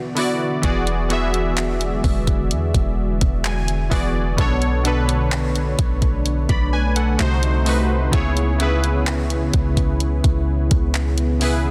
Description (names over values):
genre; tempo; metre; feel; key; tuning
contemporary R&B; 64 BPM; 4/4; straight; unclear; A4 = 440 Hz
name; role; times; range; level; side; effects
warm analog keys; accompaniment; 0.0-11.7 s; B2 to B5; -25 LUFS; equal; chorus
deep dark ambient pad; sustained chords; 0.0-11.7 s; C#3 to F#4; -30 LUFS; equal; chorus, built-in reverb
smooth R&B drum kit; drums; 0.2-11.6 s; handclaps, hi-hat, kick drum; -24 LUFS; equal; none
warm 808-style bass; bass; 0.6-11.7 s; E1 to E2; -23 LUFS; equal; none
room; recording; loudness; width
digital ambience; dense, heavily limited modern master; -20 LUFS; mono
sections
0.0-11.7 A section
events
synth keys fill 3.0-4.4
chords
0.0 D69; 0.6 E9; 4.4 Bm9; 7.2 Cdim7; 8.1 C#m7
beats
| 0.63 1.57 2.51 3.44 | 4.38 5.32 6.26 7.20 | 8.13 9.07 10.01 10.95